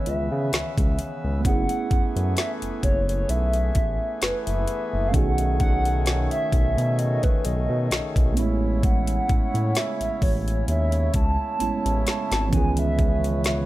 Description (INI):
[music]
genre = contemporary R&B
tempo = 65 BPM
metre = 4/4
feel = swing 54% on 16ths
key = unclear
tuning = A4 = 440 Hz
[part]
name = hollow clarinet-like synth lead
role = melody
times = 0.0-13.6 s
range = B4 to A5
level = -28 LUFS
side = equal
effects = chorus, tremolo, ping-pong delay
[part]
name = mellow tine electric piano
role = accompaniment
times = 0.0-13.7 s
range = D#3 to G#4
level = -30 LUFS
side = right 5 dB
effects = overdrive
[part]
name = hand-pumped harmonium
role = sustained chords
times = 0.0-13.7 s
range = C#3 to E5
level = -32 LUFS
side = left 2 dB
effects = sidechain pumping
[part]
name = smooth synth bass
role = bass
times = 0.1-13.7 s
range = F#1 to C#3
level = -24 LUFS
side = equal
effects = none
[part]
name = trap drum kit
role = drums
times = 0.1-13.7 s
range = hi-hat, kick drum, snare drum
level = -23 LUFS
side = equal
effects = none
[sound]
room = digital ambience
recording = none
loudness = -20 LUFS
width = side -16 dB against mid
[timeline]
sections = 0.0-13.7 A section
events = drum fill 11.6-12.5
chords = 0.0 C#m7; 1.4 F#m11; 5.1 B13; 8.4 Amaj7; 12.5 C#m7